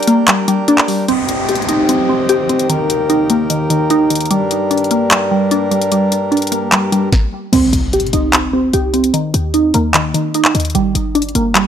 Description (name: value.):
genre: hip hop, trap.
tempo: 149 BPM.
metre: 4/4.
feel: half-time.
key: unclear.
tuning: A4 = 439 Hz.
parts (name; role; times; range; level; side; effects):
pedal harmonium; sustained chords; 0.0-7.1 s; Eb2 to G5; -18 LUFS; left 1 dB; none.
glassy wavetable pluck; arpeggios; 0.0-11.7 s; Eb3 to G4; -14 LUFS; equal; chorus, low-pass filter, analog delay.
trap drum kit; drums; 0.0-11.6 s; crash cymbal, handclaps, hi-hat, kick drum, snare drum; -16 LUFS; equal; none.
downlifter and impact; sound effects; 1.1-4.3, 7.5-9.1 s; none; -24 LUFS; right 1 dB; none.
short 808-style bass; bass; 7.5-11.7 s; G1 to Eb3; -19 LUFS; equal; none.
room: moderate recital hall reverb, RT60 1.4 s.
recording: dry, gritty hardware recording.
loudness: -12 LUFS.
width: side -9 dB against mid.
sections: 0.0-1.1 A section; 1.1-7.5 B section; 7.5-11.7 C section.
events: break 0.0-1.1; stop 7.1-7.5; impact 7.5-9.1.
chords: 0.0 Gm; 1.1 Cm; 2.7 Eb; 4.3 Gm; 7.5 Cm; 9.1 Eb5; 10.7 Gm.